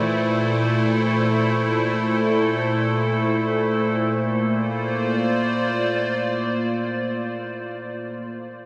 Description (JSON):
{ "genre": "ambient", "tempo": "free time", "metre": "none", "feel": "none", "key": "Bb lydian", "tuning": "A4 = 439 Hz", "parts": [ { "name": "evolving wavetable pad", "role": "sustained chords", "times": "0.0-7.4 s", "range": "Bb2 to D5", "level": "-22 LUFS", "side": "equal", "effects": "chorus, built-in reverb" }, { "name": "concert harp", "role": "arpeggios", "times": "0.0-7.1 s", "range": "none", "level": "barely audible", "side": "none", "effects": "none" } ], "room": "wet huge ambient reverb, RT60 8.7 s", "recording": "cassette tape", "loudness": "-22 LUFS", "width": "mono", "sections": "0.0-4.0 A section; 4.0-7.1 B section", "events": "none", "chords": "0.0 Am/Bb; 4.0 Bb", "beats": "free time" }